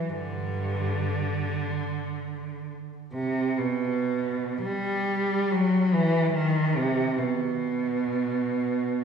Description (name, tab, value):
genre	classical, free, expressive piece for unaccompanied cello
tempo	70 BPM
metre	4/4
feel	rubato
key	unclear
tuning	A4 = 441 Hz
part	rich cello	solo	0.0-9.0 s	G2 to G3	-24 LUFS	right 1 dB	none
room	wet concert hall reverb, RT60 2.1 s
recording	heard from further back in the room, small room ambience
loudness	-24 LUFS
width	side -6 dB against mid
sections	0.0-9.0 A section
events	none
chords	none